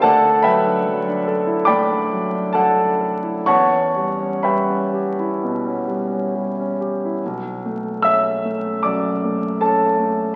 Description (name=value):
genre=classical, impressionist solo piano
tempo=62-80 BPM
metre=4/4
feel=rubato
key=B minor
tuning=A4 = 440 Hz
part: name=warm concert grand piano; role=solo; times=0.0-10.4 s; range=B1 to E6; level=-19 LUFS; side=equal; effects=none
room=wet recital hall reverb, RT60 1.5 s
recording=very old 78 rpm record, vinyl crackle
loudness=-19 LUFS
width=mono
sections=0.0-7.2 A section; 7.2-10.4 B section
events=none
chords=0.0 Dadd9; 3.5 Em6; 7.2 Bm9